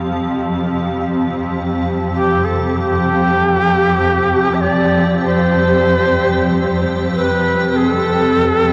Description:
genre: dark ambient drone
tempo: 48 BPM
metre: 4/4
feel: straight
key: unclear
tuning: A4 = 440 Hz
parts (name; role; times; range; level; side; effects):
- granular cloud pad; sustained chords; 0.0-8.7 s; C4 to G5; -22 LUFS; equal; built-in reverb
- swarming drone; drone; 0.0-8.7 s; F2 to F3; -21 LUFS; equal; built-in reverb
- breathy shakuhachi; melody; 2.1-8.7 s; G4 to E5; -18 LUFS; equal; delay
room: wet huge ambient reverb, RT60 8.6 s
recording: worn, warbling old tape, cassette tape, warbly pitch drift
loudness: -16 LUFS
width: mono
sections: 0.0-8.7 A section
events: none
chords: 0.0 Fsus2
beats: 0.23 1.48 | 2.73 3.98 5.23 6.48 | 7.73

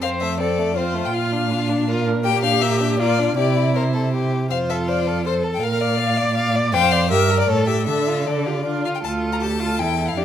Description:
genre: quick classical-period movement for string quartet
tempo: 160 BPM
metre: 3/4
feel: straight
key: F major, D minor from 6.7 s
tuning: A4 = 440 Hz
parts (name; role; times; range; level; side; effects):
- clear violin; melody; 0.0-10.2 s; C5 to Bb5; -23 LUFS; left 9 dB; none
- clear violin; second line; 0.0-10.2 s; A3 to F5; -26 LUFS; left 3 dB; none
- rich viola; accompaniment; 0.0-10.2 s; D4 to D5; -24 LUFS; right 2 dB; none
- warm cello; bass; 0.0-10.2 s; D2 to D3; -22 LUFS; right 3 dB; none
room: moderate recital hall reverb, RT60 1.4 s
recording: none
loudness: -18 LUFS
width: side -10 dB against mid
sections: 0.0-9.0 A section; 9.0-10.2 B section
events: none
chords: 0.0 F; 1.1 Bb; 2.2 Gm/Bb; 3.4 C; 4.5 F; 5.6 Bb; 6.7 Dm/F; 7.1 Edim/G; 7.5 A7; 7.9 Dm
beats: | 0.02 0.40 0.77 | 1.14 1.51 1.88 | 2.25 2.62 2.99 | 3.37 3.75 4.13 | 4.51 4.88 5.26 | 5.63 6.00 6.37 | 6.74 7.11 7.49 | 7.88 8.26 8.65 | 9.04 9.42 9.79 | 10.17

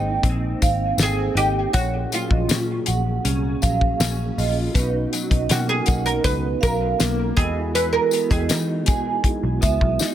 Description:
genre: indie pop, bedroom pop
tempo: 80 BPM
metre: 4/4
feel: straight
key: unclear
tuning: A4 = 440 Hz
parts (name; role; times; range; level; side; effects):
- vibraphone with soft mallets; second line; 0.0-10.0 s; B4 to G#5; -27 LUFS; right 6 dB; analog chorus, tape echo
- electric guitar through a small old amp; accompaniment; 0.0-10.1 s; Ab2 to G#4; -29 LUFS; left 3 dB; ensemble chorus, vibrato effect
- mellow tonewheel organ; accompaniment; 0.0-10.1 s; G#3 to G5; -30 LUFS; right 6 dB; chorus vibrato, stopped rotary speaker, cassette tape
- vintage muted picked electric bass; bass; 0.0-10.0 s; Ab1 to E3; -24 LUFS; left 1 dB; none
- damped 70s drum kit; drums; 0.2-10.1 s; hi-hat, kick drum, snare drum; -22 LUFS; left 1 dB; none
- tambourine; percussion; 0.6-10.1 s; none; -32 LUFS; left 8 dB; none
- oud; melody; 1.0-9.0 s; F4 to B4; -24 LUFS; right 2 dB; lush chorus, tape echo
room: light reverb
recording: none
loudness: -18 LUFS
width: side -11 dB against mid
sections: 0.0-10.1 A section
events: oud solo 0.0-10.1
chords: 0.0 Abmaj7; 1.7 Gbmaj7/Bb; 4.7 Bmaj7; 7.4 Emaj7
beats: 0.25 1.00 | 1.75 2.50 3.25 4.00 | 4.75 5.50 6.25 7.00 | 7.75 8.50 9.25 10.00

